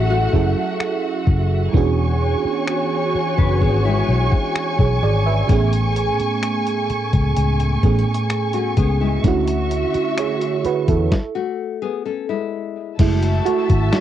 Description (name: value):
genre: contemporary R&B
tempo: 64 BPM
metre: 4/4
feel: straight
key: F# minor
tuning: A4 = 438 Hz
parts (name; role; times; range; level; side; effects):
- FM electric piano; accompaniment; 0.0-14.0 s; A2 to E5; -21 LUFS; right 7 dB; chorus, cassette tape
- warm studio string section; sustained chords; 0.0-14.0 s; A3 to C#6; -24 LUFS; left 1 dB; cassette tape
- nylon-string guitar; arpeggios; 0.0-13.0 s; G#3 to B4; -26 LUFS; left 10 dB; cassette tape, tape echo
- vintage muted fingered electric bass; bass; 0.0-13.9 s; E1 to E2; -19 LUFS; left 1 dB; none
- dusty soul sampler-style drum kit; drums; 0.3-14.0 s; crash cymbal, finger snaps, hi-hat, kick drum, snare drum; -19 LUFS; left 1 dB; cassette tape
- large celesta; texture; 13.5-14.0 s; C#6 to E6; -32 LUFS; left 8 dB; stereo widening, cassette tape, tape echo
room: light reverb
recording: home recording on cassette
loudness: -16 LUFS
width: side -11 dB against mid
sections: 0.0-13.0 A section; 13.0-14.0 B section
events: stop 11.1-13.0; FM electric piano solo 13.0-14.0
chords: 0.0 F#m7; 1.7 E13; 5.5 Amaj7; 9.2 Dmaj9; 13.0 F#m7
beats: 0.80 | 1.74 2.68 3.62 4.55 | 5.49 6.43 7.37 8.30 | 9.24 10.18 11.12 12.05 | 12.99 13.93